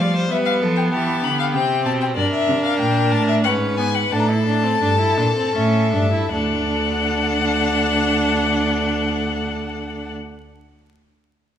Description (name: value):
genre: classical, baroque-style fugue for string quartet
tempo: 75-98 BPM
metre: 3/4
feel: straight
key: unclear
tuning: A4 = 440 Hz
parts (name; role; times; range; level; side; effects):
- rich violin; melody; 0.0-10.1 s; D5 to B5; -22 LUFS; left 6 dB; none
- rich violin; second line; 0.0-10.1 s; G4 to D5; -25 LUFS; left 2 dB; none
- bright viola; accompaniment; 0.0-10.1 s; G3 to E4; -24 LUFS; right 2 dB; none
- rich cello; bass; 0.0-10.1 s; D2 to G3; -22 LUFS; right 2 dB; none
room: wet recital hall reverb, RT60 1.6 s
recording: minimal, uncompressed stereo recording, vinyl crackle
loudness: -17 LUFS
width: side -9 dB against mid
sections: 0.0-6.3 A section; 6.3-11.1 B section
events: slowing down 1.2-6.3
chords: 0.3 G; 1.5 C5; 2.2 Em7b5; 3.5 G#m7; 4.1 A7sus4; 5.6 A7; 6.3 D